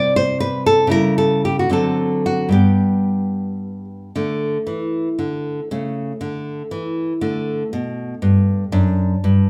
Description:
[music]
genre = classical, baroque-style dance for nylon-string guitar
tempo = 78 BPM (dotted quarters)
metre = 6/8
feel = rubato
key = G major, D major from 4.2 s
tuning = A4 = 440 Hz
[part]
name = nylon-string guitar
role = solo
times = 0.0-9.5 s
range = F#2 to D5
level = -19 LUFS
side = equal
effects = none
[sound]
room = moderate large studio reverb, RT60 0.9 s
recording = band playing live in one room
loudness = -19 LUFS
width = mono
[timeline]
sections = 0.0-4.2 A section; 4.2-9.5 A section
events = none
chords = 0.0 C; 0.9 C#dim; 1.7 D7; 2.5 G; 4.2 D5; 5.7 A/C#; 7.2 D5; 8.7 D/F#

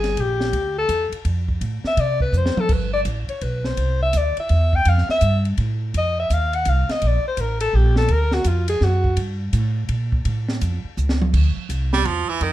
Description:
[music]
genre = jazz, small-group swing and bop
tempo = 166 BPM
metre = 3/4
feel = swing 65% on 8ths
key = D minor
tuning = A4 = 439 Hz
[part]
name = breathy alto saxophone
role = melody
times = 0.0-9.2 s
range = F4 to G5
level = -22 LUFS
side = left 2 dB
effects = none
[part]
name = upright bass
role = bass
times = 0.0-12.5 s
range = G1 to C3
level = -20 LUFS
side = equal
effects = none
[part]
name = compact cocktail drum kit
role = drums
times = 0.0-12.5 s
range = crash cymbal, hi-hat, kick drum, ride cymbal, snare drum, toms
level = -27 LUFS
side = right 1 dB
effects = none
[part]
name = edgy baritone saxophone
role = second line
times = 11.9-12.5 s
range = Eb3 to G3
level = -20 LUFS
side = right 7 dB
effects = none
[sound]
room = light reverb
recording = none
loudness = -18 LUFS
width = side -14 dB against mid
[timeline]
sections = 0.0-2.7 A section; 2.7-11.3 A section; 11.3-12.5 A section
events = alto saxophone solo 0.0-11.3; drum fill 2.3-2.7, 11.0-11.3; baritone saxophone solo 11.3-12.5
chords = 0.0 Gm; 0.5 Dm9; 2.7 Gadd9; 3.8 Cadd9; 4.9 Fmaj9; 5.9 F5; 7.0 Bbmaj7(no3); 8.1 Bb(b13)/D; 9.2 Gmadd9; 10.3 Aaug; 11.3 Dsus2

